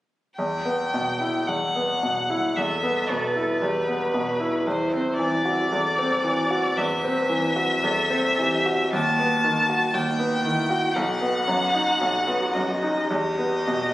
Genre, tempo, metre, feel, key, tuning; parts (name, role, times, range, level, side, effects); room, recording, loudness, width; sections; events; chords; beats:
classical, slow romantic movement for piano quartet; 57 BPM; 4/4; uneven beats, rubato; E minor; A4 = 438 Hz
rich violin; melody; 0.4-13.9 s; B4 to A5; -24 LUFS; left 1 dB
bright grand piano; accompaniment; 0.4-13.9 s; B1 to F#4; -24 LUFS; equal
warm cello; second line; 2.6-13.9 s; D#4 to B4; -30 LUFS; right 1 dB
moderate recital hall reverb, RT60 1.8 s; recorded on a phone in the room, studio reverb; -21 LUFS; side -15 dB against mid
0.4-13.9 A section
0.4 Em; 4.7 E9sus4; 8.9 B7/D#; 10.9 B; 13.1 Em
| 0.39 1.48 2.57 3.62 | 4.66 5.71 6.76 7.83 | 8.92 9.93 10.94 11.99 | 13.08